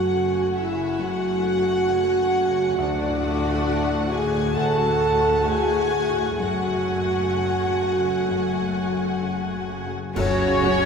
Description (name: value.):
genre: cinematic, emotional film score for orchestra.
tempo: 63-69 BPM.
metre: 4/4.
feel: rubato.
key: F# minor.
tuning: A4 = 441 Hz.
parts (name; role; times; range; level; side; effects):
warm symphonic violin section; melody; 0.0-10.9 s; C#5 to A5; -30 LUFS; left 3 dB; none.
dark studio violin section; second line; 0.0-10.9 s; C#4 to G#5; -31 LUFS; left 2 dB; none.
dark concert grand piano; accompaniment; 0.0-10.9 s; D2 to F#4; -28 LUFS; left 2 dB; none.
dark symphonic viola section; accompaniment; 0.0-10.7 s; A3 to F#4; -30 LUFS; right 1 dB; none.
dark French horn section; sustained chords; 0.0-10.9 s; C#3 to A4; -23 LUFS; right 1 dB; none.
warm studio cello section; bass; 0.0-10.9 s; D2 to F#4; -31 LUFS; right 3 dB; none.
warm symphonic double bass section; bass; 0.0-10.7 s; F#1 to F#2; -33 LUFS; right 3 dB; none.
small flute group; second line; 10.2-10.9 s; C#5; -27 LUFS; left 4 dB; none.
clash cymbals and concert bass drum; percussion; 10.2-10.9 s; none; -32 LUFS; equal; none.
timpani; percussion; 10.2-10.9 s; F#2; -31 LUFS; left 1 dB; none.
room: wet church reverb, RT60 3.6 s.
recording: minimal, uncompressed stereo recording.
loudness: -20 LUFS.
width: side -6 dB against mid.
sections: 0.0-10.2 A section.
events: band accent 10.2-10.9.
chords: 0.0 F#madd9; 2.8 D; 6.4 F#madd9; 10.2 F#m.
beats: 0.14 1.01 1.90 | 2.79 3.67 4.56 5.47 | 6.40 7.34 8.28 9.22 | 10.16.